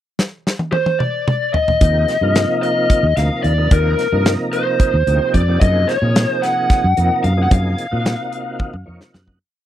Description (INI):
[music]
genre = electric jazz fusion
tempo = 221 BPM (eighths)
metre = 7/8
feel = straight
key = unclear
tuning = A4 = 440 Hz
[part]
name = modern studio drum kit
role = drums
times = 0.2-9.4 s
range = hi-hat, kick drum, snare drum, toms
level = -17 LUFS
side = equal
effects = none
[part]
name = lead guitar through a small cranked amp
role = melody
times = 0.7-8.8 s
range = Bb4 to Gb5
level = -18 LUFS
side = left 2 dB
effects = overdrive
[part]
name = tonewheel organ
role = accompaniment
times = 1.8-9.4 s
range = C3 to Gb5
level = -23 LUFS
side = right 2 dB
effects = slow rotary speaker, chorus vibrato
[part]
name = fretless electric bass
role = bass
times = 1.8-9.4 s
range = D2 to Bb2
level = -17 LUFS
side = equal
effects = none
[sound]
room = little or no reverb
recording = dry, close 1970s-style studio recording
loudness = -14 LUFS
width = side -12 dB against mid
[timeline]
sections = 0.0-1.8 pickup bar; 1.8-9.4 groove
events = drum fill 0.2-1.8, 8.6-9.4; fade-out 7.5-9.4; tonewheel organ fill 8.6-9.4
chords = 0.0 N.C.; 1.8 Ebadd9; 5.6 Gbmaj9